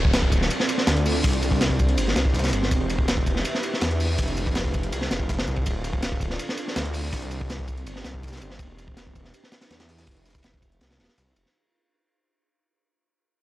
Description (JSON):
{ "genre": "drum and bass, jungle", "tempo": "163 BPM", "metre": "4/4", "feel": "straight", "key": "unclear", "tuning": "A4 = 440 Hz", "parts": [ { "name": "detuned saw bass", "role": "bass", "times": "0.0-11.4 s", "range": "D1 to E2", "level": "-26 LUFS", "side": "equal", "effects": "none" }, { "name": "crunchy breakbeat drum kit", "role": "drums", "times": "0.0-11.5 s", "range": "hi-hat, kick drum, ride cymbal, snare drum", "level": "-24 LUFS", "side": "equal", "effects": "none" }, { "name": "downlifter", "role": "sound effects", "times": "0.0-2.7 s", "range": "none", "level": "-34 LUFS", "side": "equal", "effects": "none" }, { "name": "breakbeat sampler-style drum kit", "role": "drums", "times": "0.1-11.5 s", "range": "hi-hat, snare drum, tambourine", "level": "-36 LUFS", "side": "equal", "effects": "high-pass filter on hats, high-pass filter on perc, high-pass filter on snare" } ], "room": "studio ambience", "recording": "dry, gritty hardware recording, cassette tape", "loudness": "-22 LUFS", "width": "side -16 dB against mid", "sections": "0.0-11.5 A section", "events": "fade-out 0.0-11.5", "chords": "none" }